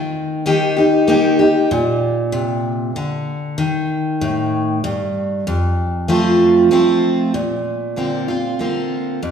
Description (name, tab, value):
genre	country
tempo	96 BPM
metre	3/4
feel	straight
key	Bb major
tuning	A4 = 440 Hz
part	picked steel-string acoustic guitar	solo	0.0-9.3 s	F2 to G4	-15 LUFS	equal	none
room	wet recital hall reverb, RT60 1.6 s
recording	recorded in a church or concert hall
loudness	-15 LUFS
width	side -7 dB against mid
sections	0.0-7.3 A section; 7.3-9.3 B section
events	none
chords	0.0 Eb; 1.7 Bb; 3.6 Eb; 5.5 F; 7.3 Bbadd9